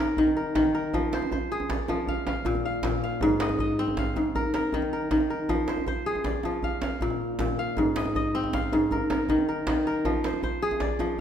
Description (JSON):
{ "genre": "west african traditional, West African string and xylophone music", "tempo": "105 BPM (dotted quarters)", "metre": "12/8", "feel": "straight", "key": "F dorian", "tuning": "A4 = 440 Hz", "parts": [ { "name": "kora", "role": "arpeggios", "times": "0.0-11.2 s", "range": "Ab2 to F5", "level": "-25 LUFS", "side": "left 1 dB", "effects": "none" }, { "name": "djembe", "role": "percussion", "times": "0.2-11.1 s", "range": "none", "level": "-30 LUFS", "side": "right 2 dB", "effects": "none" } ], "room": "wet recital hall reverb, RT60 1.5 s", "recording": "minimal, uncompressed stereo recording", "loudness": "-24 LUFS", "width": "side -9 dB against mid", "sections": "0.0-11.2 A section", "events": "none", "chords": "0.0 Eb5; 0.9 Fm; 2.1 Bb; 3.2 Ab; 4.4 Eb5; 5.5 Fm; 6.6 Bb; 7.8 Ab; 8.9 Eb5; 10.0 Fm" }